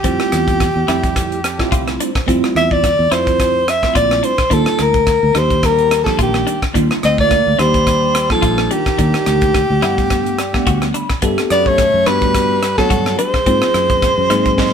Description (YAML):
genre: electric jazz fusion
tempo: 107 BPM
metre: 4/4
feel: swing 55% on 16ths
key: unclear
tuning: A4 = 437 Hz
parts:
  - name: warm soprano saxophone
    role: melody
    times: 0.0-14.7 s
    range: G4 to E5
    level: -16 LUFS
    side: equal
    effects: none
  - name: bell-like tine electric piano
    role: accompaniment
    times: 0.0-14.7 s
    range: F#3 to B5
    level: -21 LUFS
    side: right 2 dB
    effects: fast stereo tremolo, phaser
  - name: clean electric guitar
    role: stabs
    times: 0.0-14.5 s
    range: B3 to F#4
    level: -24 LUFS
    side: left 5 dB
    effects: none
  - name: fingered electric bass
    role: bass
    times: 0.0-14.7 s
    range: Bb1 to Ab2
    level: -20 LUFS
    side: equal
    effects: none
  - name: tight funk drum kit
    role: drums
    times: 0.0-14.7 s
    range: hi-hat, kick drum, rim click, snare drum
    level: -19 LUFS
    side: equal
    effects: none
  - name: warm tenor saxophone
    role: second line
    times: 5.6-14.7 s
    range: Eb3 to C4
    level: -23 LUFS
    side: left 4 dB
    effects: none
room: moderate stone room reverb, RT60 1.1 s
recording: band playing live in one room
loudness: -12 LUFS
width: side -7 dB against mid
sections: 0.0-14.7 A section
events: tine electric piano fill 1.2-2.3, 10.1-11.2, 14.0-14.7; drum fill 14.6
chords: 0.0 Fmaj9; 4.5 Ebmaj9; 9.8 Gmaj9; 13.5 Ab13